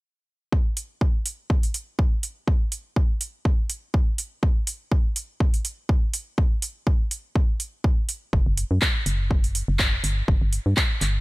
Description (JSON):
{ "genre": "piano house", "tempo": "123 BPM", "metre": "4/4", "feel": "swing 55% on 16ths", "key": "unclear", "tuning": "A4 = 440 Hz", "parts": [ { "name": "electronic kick drum", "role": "drums", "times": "0.5-10.9 s", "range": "none", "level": "-21 LUFS", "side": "equal", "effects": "none" }, { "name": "house drum kit", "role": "drums", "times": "0.8-11.1 s", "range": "handclaps, hi-hat", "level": "-26 LUFS", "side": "right 1 dB", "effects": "none" }, { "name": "organ-like FM bass", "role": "bass", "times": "8.3-11.2 s", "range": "F#1 to G2", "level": "-23 LUFS", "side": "equal", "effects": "tube saturation, sidechain pumping" } ], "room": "digital ambience", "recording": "none", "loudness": "-22 LUFS", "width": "side -22 dB against mid", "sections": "0.5-11.2 A section", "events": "none", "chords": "none" }